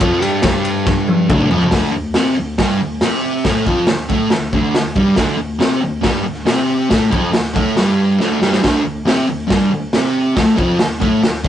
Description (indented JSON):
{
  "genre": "garage rock duo or trio",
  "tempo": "139 BPM",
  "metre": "4/4",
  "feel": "straight",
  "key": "unclear",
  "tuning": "A4 = 440 Hz",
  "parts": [
    { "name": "fuzz guitar", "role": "riff", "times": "0.0-11.5 s", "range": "D2 to C4", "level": "-15 LUFS", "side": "equal", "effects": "distortion" },
    { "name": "raw garage drum kit", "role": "drums", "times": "0.0-11.5 s", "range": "hi-hat, kick drum, ride cymbal, snare drum, toms", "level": "-17 LUFS", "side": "equal", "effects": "none" }
  ],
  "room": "light reverb",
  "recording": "rough rehearsal-room recording, warm saturation, nothing above 10.5 kHz",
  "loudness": "-13 LUFS",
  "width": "side -11 dB against mid",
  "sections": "0.0-1.7 A section; 1.7-11.5 B section",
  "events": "drum fill 0.9-1.7, 8.2-8.6",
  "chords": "0.0 Dmadd11; 1.7 D5",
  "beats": "| 0.01 0.44 0.87 1.30 | 1.73 2.16 2.59 3.02 | 3.46 3.89 4.32 4.75 | 5.18 5.62 6.05 6.48 | 6.91 7.34 7.78 8.21 | 8.64 9.07 9.50 9.94 | 10.37 10.80 11.23"
}